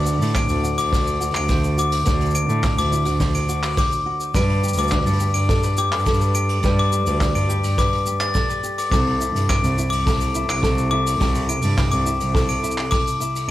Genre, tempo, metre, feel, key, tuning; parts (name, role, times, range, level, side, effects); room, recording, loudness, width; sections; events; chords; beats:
folktronica; 105 BPM; 4/4; straight; A4 = 441 Hz
flamenco guitar; arpeggios; 0.0-13.5 s; C3 to C5; -26 LUFS; right 1 dB; low-pass filter, tape echo, plate reverb
warm cello; bass; 0.0-12.7 s; C2 to A2; -22 LUFS; right 1 dB
vintage brush drum kit; drums; 0.0-13.5 s; handclaps, hi-hat, shaker; -30 LUFS; right 1 dB
glockenspiel with brass mallets; second line; 0.4-13.0 s; D6 to D7; -23 LUFS; left 4 dB; tape echo
kick drum; drums; 0.4-13.0 s; -22 LUFS; equal
moderate studio reverb, RT60 0.5 s; -18 LUFS; side -14 dB against mid
0.0-13.5 A section
filter sweep on nylon-string guitar 0.0-13.5
0.0 D7; 4.4 G; 8.9 C6
0.35 0.93 1.50 | 2.07 2.64 3.21 3.78 | 4.35 4.93 5.50 6.07 | 6.64 7.21 7.78 8.35 | 8.93 9.50 10.07 10.64 | 11.21 11.78 12.35 12.93 | 13.50